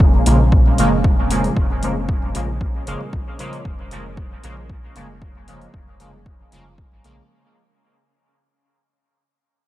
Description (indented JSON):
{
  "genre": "dub techno",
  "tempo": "115 BPM",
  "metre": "4/4",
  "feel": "straight",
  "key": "Bb minor",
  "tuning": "A4 = 443 Hz",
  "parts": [
    { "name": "deep dark ambient pad", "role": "sustained chords", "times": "0.0-7.3 s", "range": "Bb3 to C5", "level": "-28 LUFS", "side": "left 1 dB", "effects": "chorus, built-in reverb, sidechain pumping" },
    { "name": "soft dub sub bass", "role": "bass", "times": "0.0-7.2 s", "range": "F1 to Bb1", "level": "-22 LUFS", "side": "equal", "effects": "tube saturation, sidechain pumping" },
    { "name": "electronic kick drum", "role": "drums", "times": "0.0-6.9 s", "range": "none", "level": "-17 LUFS", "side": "equal", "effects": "overdrive" },
    { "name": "wind-like tuned noise texture", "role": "texture", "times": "0.0-7.3 s", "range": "Db4", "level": "-33 LUFS", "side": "right 2 dB", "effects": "built-in reverb, sidechain pumping" },
    { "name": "resonant sweep polysynth", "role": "stabs", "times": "0.3-7.2 s", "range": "Db3 to Bb3", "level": "-22 LUFS", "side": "right 1 dB", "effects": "chorus, phaser, sidechain pumping, dub echo" },
    { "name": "electronic hi-hat", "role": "drums", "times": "0.3-7.2 s", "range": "none", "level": "-29 LUFS", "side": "left 2 dB", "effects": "overdrive" },
    { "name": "congas", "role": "percussion", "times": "0.3-7.0 s", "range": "none", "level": "-34 LUFS", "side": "right 4 dB", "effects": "none" }
  ],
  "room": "digital ambience",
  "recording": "none",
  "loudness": "-15 LUFS",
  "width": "side -15 dB against mid",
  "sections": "0.0-7.3 A section",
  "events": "fade-out 0.0-7.3; filter sweep on analog polysynth 0.0-7.3",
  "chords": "0.0 Bbm7"
}